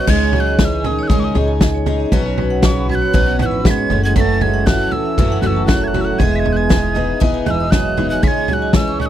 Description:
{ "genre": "indie folk with a building arrangement", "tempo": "118 BPM", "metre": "4/4", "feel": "straight", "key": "C# minor", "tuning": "A4 = 444 Hz", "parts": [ { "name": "breathy mellow wooden whistle", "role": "melody", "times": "0.0-9.1 s", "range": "C#6 to B6", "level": "-22 LUFS", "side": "right 1 dB", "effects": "none" }, { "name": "warm trombone", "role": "second line", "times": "0.0-9.1 s", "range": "C#3 to A3", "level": "-23 LUFS", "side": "right 11 dB", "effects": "none" }, { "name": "picked twelve-string acoustic guitar", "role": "accompaniment", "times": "0.0-9.1 s", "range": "F#2 to G#4", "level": "-22 LUFS", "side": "left 8 dB", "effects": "none" }, { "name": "vibraphone with hard mallets", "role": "arpeggios", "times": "0.0-9.1 s", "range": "G#4 to D#6", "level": "-24 LUFS", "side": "right 8 dB", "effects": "none" }, { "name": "upright bass", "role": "bass", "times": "0.1-9.1 s", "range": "E1 to C#2", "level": "-20 LUFS", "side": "equal", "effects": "none" }, { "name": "natural country drum kit", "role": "drums", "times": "0.1-9.1 s", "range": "crash cymbal, kick drum, snare drum, toms", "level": "-17 LUFS", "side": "equal", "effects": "none" } ], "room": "little or no reverb", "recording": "dry, close 1970s-style studio recording", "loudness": "-13 LUFS", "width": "side -11 dB against mid", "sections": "0.1-9.1 A section", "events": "none", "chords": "0.1 C#sus2; 2.1 Bsus2; 3.9 F#m7; 6.2 Emaj7; 8.2 C#sus2", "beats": "| 0.08 0.59 1.10 1.61 | 2.12 2.63 3.14 3.65 | 4.16 4.67 5.18 5.69 | 6.20 6.70 7.21 7.72 | 8.23 8.74" }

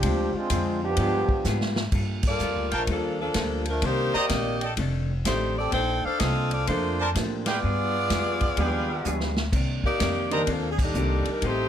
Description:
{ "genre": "jazz, big band swing", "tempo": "126 BPM", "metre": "4/4", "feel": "swing 66% on 8ths", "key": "G minor", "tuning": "A4 = 439 Hz", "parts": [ { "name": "bright trombone section", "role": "second line", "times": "0.0-1.7 s", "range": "F3 to G4", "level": "-26 LUFS", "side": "right 2 dB", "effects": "none" }, { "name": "vintage hollow-body jazz guitar", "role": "accompaniment", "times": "0.0-11.7 s", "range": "F2 to C5", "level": "-33 LUFS", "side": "left 3 dB", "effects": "none" }, { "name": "upright bass", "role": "bass", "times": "0.0-11.7 s", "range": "F1 to A2", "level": "-28 LUFS", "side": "equal", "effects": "none" }, { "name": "swinging big-band drum kit", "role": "drums", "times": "0.0-11.6 s", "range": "crash cymbal, hi-hat, kick drum, ride cymbal, snare drum", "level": "-30 LUFS", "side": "equal", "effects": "none" }, { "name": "warm upright piano", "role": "accompaniment", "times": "1.0-1.3, 6.7-11.2 s", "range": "Eb3 to A4", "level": "-32 LUFS", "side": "right 3 dB", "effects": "none" }, { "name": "clear saxophone section", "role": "melody", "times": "2.3-11.7 s", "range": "F3 to G5", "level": "-26 LUFS", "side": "left 1 dB", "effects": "plate reverb" }, { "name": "bright trumpet section", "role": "stabs", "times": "2.7-10.4 s", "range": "Ab4 to Bb5", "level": "-28 LUFS", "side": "right 1 dB", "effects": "none" } ], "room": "moderate club ambience, RT60 0.5 s", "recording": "none", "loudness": "-23 LUFS", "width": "side -9 dB against mid", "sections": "0.0-1.9 A section; 1.9-11.7 B section", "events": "trombone section solo 0.0-1.9; drum fill 1.5-1.9, 9.1-9.5; band accent 2.2, 7.4, 10.7", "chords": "0.0 Dm7b5; 1.0 G7b9; 1.9 Gm9; 3.8 Cm9; 4.8 F13; 5.7 Bbmaj9; 7.6 G7b9; 9.5 Cm9", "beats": "| 0.03 0.51 0.98 1.45 | 1.93 2.40 2.88 3.35 | 3.83 4.30 4.78 5.25 | 5.73 6.20 6.68 7.15 | 7.63 8.11 8.58 9.05 | 9.53 10.01 10.48 10.96 | 11.43" }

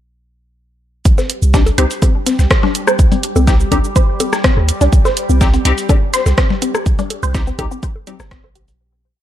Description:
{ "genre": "minimal techno", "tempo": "124 BPM", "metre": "4/4", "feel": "straight", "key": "C minor", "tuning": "A4 = 440 Hz", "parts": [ { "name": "punchy sub bass", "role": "bass", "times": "1.1-8.7 s", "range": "G1 to Eb2", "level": "-14 LUFS", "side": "equal", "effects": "sidechain pumping" }, { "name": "dusty soul sampler-style drum kit", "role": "drums", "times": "1.1-8.8 s", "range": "hi-hat, shaker, snare drum", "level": "-29 LUFS", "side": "right 1 dB", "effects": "sidechain pumping on perc, high-pass filter on perc, high-pass filter on snare, sidechain pumping on hats, high-pass filter on hats" }, { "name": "electronic kick drum", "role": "drums", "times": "1.1-8.4 s", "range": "none", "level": "-13 LUFS", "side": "equal", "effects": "none" }, { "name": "house drum kit", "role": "drums", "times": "1.1-8.8 s", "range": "hi-hat, rim click, shaker", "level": "-20 LUFS", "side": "right 2 dB", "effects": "none" }, { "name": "bubbling stepped-filter texture", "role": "texture", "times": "1.4-8.8 s", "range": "G3 to G4", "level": "-26 LUFS", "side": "equal", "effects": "chorus, built-in reverb, sidechain pumping" }, { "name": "resonant blip pluck", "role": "riff", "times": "1.2-8.6 s", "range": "G3 to C5", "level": "-20 LUFS", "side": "left 1 dB", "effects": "chorus, phaser, sidechain pumping, ping-pong delay" }, { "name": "electronic bongos, congas and rim click", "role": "percussion", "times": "1.2-8.5 s", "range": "none", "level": "-21 LUFS", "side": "left 4 dB", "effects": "tape echo" }, { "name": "wavetable chord stab", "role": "stabs", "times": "1.5-8.2 s", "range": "C4 to G4", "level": "-22 LUFS", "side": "left 4 dB", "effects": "phaser, tape echo" } ], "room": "digital ambience", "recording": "dark, warm production", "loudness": "-12 LUFS", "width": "side -12 dB against mid", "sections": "1.1-8.8 groove", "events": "fade-out 6.2-8.8", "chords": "1.1 C5", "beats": "| 1.05 1.54 2.02 2.51 | 2.99 3.47 3.96 4.44 | 4.93 5.41 5.89 6.38 | 6.86 7.34 7.83 8.31" }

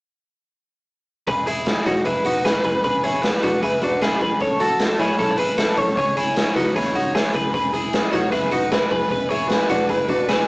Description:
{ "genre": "jangly indie pop", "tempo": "153 BPM", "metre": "4/4", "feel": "straight", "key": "E major", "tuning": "A4 = 439 Hz", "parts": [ { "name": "twelve-string electric guitar", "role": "arpeggios", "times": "1.3-10.5 s", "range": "D4 to C#5", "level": "-21 LUFS", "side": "equal", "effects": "none" }, { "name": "vintage muted picked electric bass", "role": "bass", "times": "1.3-10.4 s", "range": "E1 to D#2", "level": "-35 LUFS", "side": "equal", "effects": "none" }, { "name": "raw garage drum kit", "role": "drums", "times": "1.3-10.4 s", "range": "hi-hat, kick drum, snare drum", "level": "-22 LUFS", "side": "equal", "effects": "none" }, { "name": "fuzz lead guitar", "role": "melody", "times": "1.5-10.4 s", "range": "G#4 to C#5", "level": "-24 LUFS", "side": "equal", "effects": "distortion" } ], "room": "wet studio reverb, RT60 0.5 s", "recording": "rough rehearsal-room recording, warm saturation, small speaker sound", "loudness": "-18 LUFS", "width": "side -29 dB against mid", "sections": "1.3-10.5 A section", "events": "none", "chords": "1.3 E; 2.8 E7; 4.4 A; 6.0 C#m; 7.5 E; 9.1 E7", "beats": "| 1.27 1.67 2.06 2.45 | 2.84 3.23 3.62 4.02 | 4.41 4.80 5.19 5.58 | 5.98 6.37 6.76 7.15 | 7.54 7.93 8.33 8.72 | 9.11 9.50 9.89 10.28" }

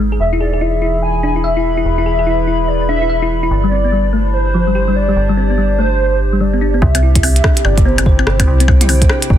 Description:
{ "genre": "IDM", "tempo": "145 BPM", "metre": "4/4", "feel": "swing 62% on 16ths", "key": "C major", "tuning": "A4 = 440 Hz", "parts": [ { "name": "warbly tape-like pad", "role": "sustained chords", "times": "0.0-9.4 s", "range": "C3 to B5", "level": "-21 LUFS", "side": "equal", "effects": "chorus, built-in reverb" }, { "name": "thumb-piano-like synth pluck", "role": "arpeggios", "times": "0.0-9.2 s", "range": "F3 to E5", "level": "-20 LUFS", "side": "left 3 dB", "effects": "chorus, dub echo" }, { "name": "metallic FM bass", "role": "bass", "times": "0.0-9.4 s", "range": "E1 to C2", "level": "-15 LUFS", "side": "equal", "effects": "none" }, { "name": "warbly nostalgic lead", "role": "melody", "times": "0.2-9.4 s", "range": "C5 to G#5", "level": "-19 LUFS", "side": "equal", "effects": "ensemble chorus, ping-pong delay" }, { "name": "electronic kick drum", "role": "drums", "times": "6.8-9.4 s", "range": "none", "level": "-13 LUFS", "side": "equal", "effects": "none" }, { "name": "glitchy drum kit", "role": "drums", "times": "6.9-9.3 s", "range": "hi-hat, percussion blips, rim click, toms", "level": "-18 LUFS", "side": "left 1 dB", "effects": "soft clipping on snare" } ], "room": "light reverb, digital ambience", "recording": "dense, heavily limited modern master", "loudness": "-11 LUFS", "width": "side -11 dB against mid", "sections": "0.0-6.8 A section; 6.8-9.4 B section", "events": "filter sweep on synth arpeggio sound 0.0-6.8", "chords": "0.2 E; 3.5 Gsus4; 6.8 C", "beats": "| 0.20 0.61 1.03 1.44 | 1.85 2.27 2.68 3.10 | 3.51 3.92 4.34 4.75 | 5.16 5.58 5.99 6.41 | 6.82 7.23 7.65 8.06 | 8.47 8.89 9.30" }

